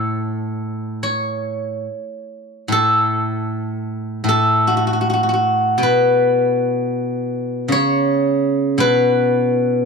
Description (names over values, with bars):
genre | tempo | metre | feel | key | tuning
chinese traditional, Chinese solo plucked strings | 71-83 BPM | 4/4 | rubato | A gong mode | A4 = 440 Hz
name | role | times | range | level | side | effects
steel-string zither | solo | 0.0-9.9 s | A2 to C#5 | -16 LUFS | equal | none
room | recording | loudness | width
light reverb | dry, close 1970s-style studio recording | -16 LUFS | side -5 dB against mid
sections
0.0-9.9 A section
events
none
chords
none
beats
0.22 1.03 1.86 | 2.70 3.50 4.28 5.05 | 5.81 6.58 7.35 8.08 | 8.81 9.55